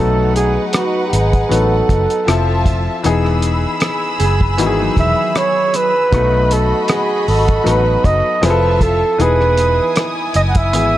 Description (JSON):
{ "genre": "lush 1970s-style soul", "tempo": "78 BPM", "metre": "4/4", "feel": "swing 54% on 16ths", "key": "E major", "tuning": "A4 = 440 Hz", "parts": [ { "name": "breathy flugelhorn", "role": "melody", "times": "0.0-11.0 s", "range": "F#4 to F#5", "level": "-16 LUFS", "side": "right 2 dB", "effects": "none" }, { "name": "warm studio violin section", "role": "second line", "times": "0.0-11.0 s", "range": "D#4 to E6", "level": "-22 LUFS", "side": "left 1 dB", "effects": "none" }, { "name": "clear grand piano", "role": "accompaniment", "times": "0.0-11.0 s", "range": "D#3 to B4", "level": "-20 LUFS", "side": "left 5 dB", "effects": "none" }, { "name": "vintage muted fingered electric bass", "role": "bass", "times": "0.0-11.0 s", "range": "E1 to B1", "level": "-17 LUFS", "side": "equal", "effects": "none" }, { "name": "cloth-damped thuddy drum kit", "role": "drums", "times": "0.4-10.9 s", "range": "hi-hat, kick drum, rim click", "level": "-18 LUFS", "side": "equal", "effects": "none" }, { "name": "mellow electric guitar", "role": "riff", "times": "4.2-5.9 s", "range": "F#3 to G#4", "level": "-23 LUFS", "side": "right 8 dB", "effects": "lush chorus" } ], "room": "light reverb", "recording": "none", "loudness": "-12 LUFS", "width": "side -14 dB against mid", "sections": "0.0-11.0 A section", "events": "none", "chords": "0.0 B7; 2.3 Fmaj7; 3.0 Emaj7; 6.1 B7; 8.4 Fmaj7; 9.2 Emaj7" }